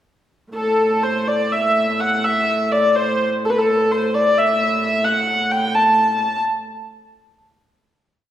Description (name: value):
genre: medieval dance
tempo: 123-140 BPM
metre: 3/4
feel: straight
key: A dorian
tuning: A4 = 440 Hz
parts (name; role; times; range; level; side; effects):
- warm hurdy-gurdy; melody; 0.5-6.4 s; A4 to A5; -16 LUFS; equal; none
- warm hurdy-gurdy; drone; 0.5-6.2 s; A2; -25 LUFS; equal; none
room: wet recital hall reverb, RT60 1.4 s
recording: heard from further back in the room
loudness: -16 LUFS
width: side -12 dB against mid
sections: 0.5-6.2 A section; 6.2-7.5 final note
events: speeding up 0.5-7.5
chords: none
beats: | 0.53 1.01 1.50 | 1.98 2.46 2.94 | 3.42 3.89 4.35 | 4.81 5.27 5.72 | 6.17